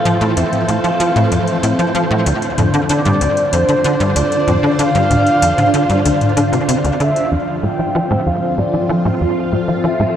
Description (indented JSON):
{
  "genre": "ambient, sequencer-driven space music",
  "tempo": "95 BPM",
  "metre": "4/4",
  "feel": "straight",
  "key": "unclear",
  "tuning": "A4 = 439 Hz",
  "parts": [
    { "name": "mellow horn-like synth lead", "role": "melody", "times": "0.0-10.2 s", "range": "C5 to G5", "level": "-19 LUFS", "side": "equal", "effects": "chorus, tape echo" },
    { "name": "phased string machine", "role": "sustained chords", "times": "0.0-10.2 s", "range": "D3 to C5", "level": "-18 LUFS", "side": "equal", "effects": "ensemble chorus, phaser" },
    { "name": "wind-like tuned noise texture", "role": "texture", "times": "0.0-10.2 s", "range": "F4 to C5", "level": "-28 LUFS", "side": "right 2 dB", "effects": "built-in reverb" },
    { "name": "tight sequencer bass", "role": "riff", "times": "0.1-10.2 s", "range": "D2 to F3", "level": "-17 LUFS", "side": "equal", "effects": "ensemble chorus, tape echo" },
    { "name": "soft vintage rhythm box", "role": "percussion", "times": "0.1-7.3 s", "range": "hi-hat, toms", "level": "-22 LUFS", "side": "left 2 dB", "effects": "overdrive" }
  ],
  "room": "wet huge ambient reverb, RT60 7.9 s",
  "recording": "none",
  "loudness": "-13 LUFS",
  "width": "side -9 dB against mid",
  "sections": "0.0-7.3 A section; 7.3-10.2 B section",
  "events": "none",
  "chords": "0.0 Fmaj7; 2.3 Dm7; 7.3 Fmaj7"
}